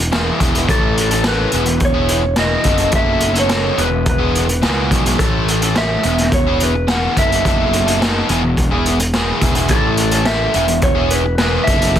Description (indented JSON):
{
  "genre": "indie rock",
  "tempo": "106 BPM",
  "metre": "4/4",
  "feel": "straight",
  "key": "E major",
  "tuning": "A4 = 438 Hz",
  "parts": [
    { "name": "crunchy overdriven guitar", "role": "riff", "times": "0.0-12.0 s", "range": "E2 to A4", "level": "-18 LUFS", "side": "equal", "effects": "none" },
    { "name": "overdriven picked electric bass", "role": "bass", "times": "0.0-12.0 s", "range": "E1 to C#2", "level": "-20 LUFS", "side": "equal", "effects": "none" },
    { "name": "raw garage drum kit", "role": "drums", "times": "0.1-12.0 s", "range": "hi-hat, kick drum, snare drum", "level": "-18 LUFS", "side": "equal", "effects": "none" },
    { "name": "mellow electric guitar", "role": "melody", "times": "0.7-12.0 s", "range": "A4 to F#5", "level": "-19 LUFS", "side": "equal", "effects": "slapback echo" }
  ],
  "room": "light reverb",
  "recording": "dense, heavily limited modern master",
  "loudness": "-13 LUFS",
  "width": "side -10 dB against mid",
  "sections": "0.0-12.0 A section",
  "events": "none",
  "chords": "0.0 E; 0.7 A; 1.5 E; 2.7 B5/F#; 3.8 E; 5.2 A; 6.0 E; 7.2 B7sus4/F#; 8.3 E; 9.7 A; 10.6 E"
}